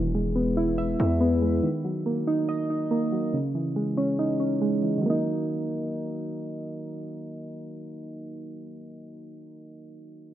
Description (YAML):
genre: hip hop, drill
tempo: 141 BPM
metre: 4/4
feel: half-time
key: Eb phrygian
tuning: A4 = 441 Hz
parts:
  - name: soft electric-piano-like synth keys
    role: accompaniment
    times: 0.0-10.3 s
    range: Db3 to E5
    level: -26 LUFS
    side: right 1 dB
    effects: chorus
  - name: distorted 808-style bass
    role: bass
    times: 0.0-1.6 s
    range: E1 to E2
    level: -27 LUFS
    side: equal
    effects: distortion
room: moderate plate reverb, RT60 2.4 s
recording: rough home demo mix, low-pass filter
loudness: -24 LUFS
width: side -12 dB against mid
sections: 0.0-5.0 A section; 5.0-8.4 B section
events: filter sweep 0.0-5.0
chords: 0.0 E; 1.6 Ebm; 3.3 Dbmadd9; 5.0 Ebm